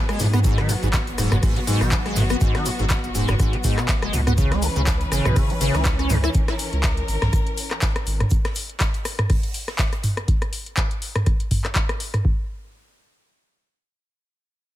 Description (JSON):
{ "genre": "acid house", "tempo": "122 BPM", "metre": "4/4", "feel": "swing 56% on 16ths", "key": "unclear", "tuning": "A4 = 438 Hz", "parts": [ { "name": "clear studio string section", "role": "sustained chords", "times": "0.0-8.3 s", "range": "E3 to B4", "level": "-29 LUFS", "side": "left 1 dB", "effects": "sidechain pumping" }, { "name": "liquid acid bass", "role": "riff", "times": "0.1-6.3 s", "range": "F#2 to E4", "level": "-24 LUFS", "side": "equal", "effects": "tube saturation, analog chorus, sidechain pumping, digital delay" }, { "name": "booming analog drum machine", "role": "drums", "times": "0.1-12.2 s", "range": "handclaps, hi-hat, rim click, toms", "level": "-25 LUFS", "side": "equal", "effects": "none" }, { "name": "saturated sub bass", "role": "bass", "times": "0.2-8.2 s", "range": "D#1 to G#2", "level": "-24 LUFS", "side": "equal", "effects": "sidechain pumping" }, { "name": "big rock drum kit", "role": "drums", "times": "0.2-10.2 s", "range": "hi-hat, shaker, snare drum", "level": "-38 LUFS", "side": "right 2 dB", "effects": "none" }, { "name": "cabasa", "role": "percussion", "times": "0.2-6.3 s", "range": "none", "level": "-35 LUFS", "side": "equal", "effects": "none" }, { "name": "electronic kick drum", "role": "drums", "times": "0.4-12.4 s", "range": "none", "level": "-22 LUFS", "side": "equal", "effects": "none" } ], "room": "little or no reverb", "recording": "none", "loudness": "-19 LUFS", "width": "side -14 dB against mid", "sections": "0.0-12.2 A section; 12.2-14.8 B section", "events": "drop 0.0-12.2", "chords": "0.0 G#m7; 4.4 C#m7; 12.2 N.C." }